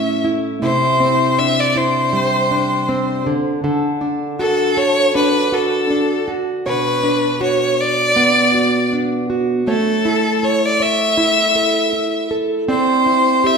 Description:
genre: pop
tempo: 80 BPM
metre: 4/4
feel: swing 55% on 16ths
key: unclear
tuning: A4 = 439 Hz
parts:
  - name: bright violin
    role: melody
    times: 0.0-13.6 s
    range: A4 to E5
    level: -16 LUFS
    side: left 1 dB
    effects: none
  - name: fingerpicked plugged-in steel-string acoustic guitar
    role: accompaniment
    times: 0.0-13.6 s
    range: A2 to D5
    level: -18 LUFS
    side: right 2 dB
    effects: none
room: wet recital hall reverb, RT60 1.4 s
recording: recorded in a church or concert hall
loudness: -14 LUFS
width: side -5 dB against mid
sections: 0.0-13.6 A section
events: none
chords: 0.0 A; 0.6 Cadd9; 3.3 D; 6.7 Bmadd9; 9.7 A; 12.7 Cadd9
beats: | 0.62 1.38 2.13 2.88 | 3.64 4.39 5.14 5.90 | 6.65 7.41 8.16 8.91 | 9.67 10.42 11.18 11.93 | 12.69 13.44

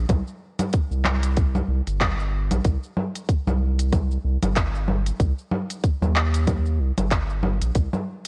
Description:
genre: organic downtempo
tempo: 94 BPM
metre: 4/4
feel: swing 58% on 16ths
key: C minor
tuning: A4 = 442 Hz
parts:
  - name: round analog bass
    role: bass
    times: 0.0-7.9 s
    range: G1 to Eb2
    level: -25 LUFS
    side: equal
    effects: tube saturation
  - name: electronic kick drum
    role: drums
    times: 0.1-7.9 s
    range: none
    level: -24 LUFS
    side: equal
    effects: none
  - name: organic electronic drum kit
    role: drums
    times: 0.1-8.3 s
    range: congas, handclaps, hi-hat, shaker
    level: -28 LUFS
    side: equal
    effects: none
room: little or no reverb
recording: worn, warbling old tape, cassette tape, warbly pitch drift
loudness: -23 LUFS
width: mono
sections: 0.0-8.3 A section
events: none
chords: none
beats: | 0.10 0.73 1.37 2.01 | 2.65 3.29 3.93 4.56 | 5.20 5.84 6.48 7.12 | 7.75

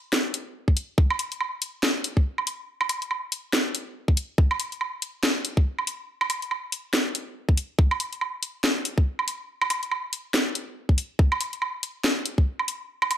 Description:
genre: dubstep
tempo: 141 BPM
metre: 4/4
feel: swing 59% on 16ths, half-time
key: none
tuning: none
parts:
  - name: garage drum kit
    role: drums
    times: 0.1-13.2 s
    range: hi-hat, snare drum, woodblock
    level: -25 LUFS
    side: equal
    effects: none
  - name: electronic kick drum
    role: drums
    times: 0.7-12.4 s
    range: none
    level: -19 LUFS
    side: equal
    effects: none
room: moderate plate reverb, RT60 1.0 s, digital ambience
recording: dreamy mix soaked in reverb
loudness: -24 LUFS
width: side -10 dB against mid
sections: 0.0-13.2 A section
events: none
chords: none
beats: 0.13 0.55 | 0.98 1.40 1.83 2.25 | 2.68 3.11 3.53 3.96 | 4.38 4.81 5.23 5.66 | 6.08 6.51 6.94 7.36 | 7.79 8.21 8.64 9.06 | 9.49 9.91 10.34 10.77 | 11.19 11.62 12.04 12.47 | 12.89

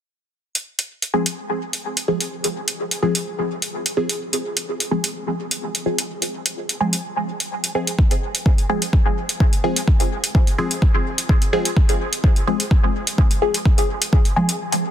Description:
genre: dub techno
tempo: 127 BPM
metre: 4/4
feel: straight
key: F minor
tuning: A4 = 440 Hz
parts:
  - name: electronic hi-hat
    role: drums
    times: 0.6-14.8 s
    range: none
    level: -21 LUFS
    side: right 1 dB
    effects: overdrive, studio ambience
  - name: filtered dub chord stab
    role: stabs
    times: 1.1-14.5 s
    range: F3 to Ab4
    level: -23 LUFS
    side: equal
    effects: phaser, cassette tape, sidechain pumping, dub echo
  - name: electronic kick drum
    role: drums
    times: 8.0-14.2 s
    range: none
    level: -16 LUFS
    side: equal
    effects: overdrive, studio ambience
room: light reverb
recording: dense, heavily limited modern master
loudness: -18 LUFS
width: side -10 dB against mid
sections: 0.4-14.9 A section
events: break 14.6-14.9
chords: 0.4 Fm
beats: | 0.43 0.90 1.37 1.84 | 2.32 2.79 3.26 3.73 | 4.21 4.68 5.15 5.62 | 6.10 6.57 7.04 7.51 | 7.99 8.46 8.93 9.40 | 9.88 10.35 10.82 11.29 | 11.77 12.24 12.71 13.18 | 13.65 14.13 14.60

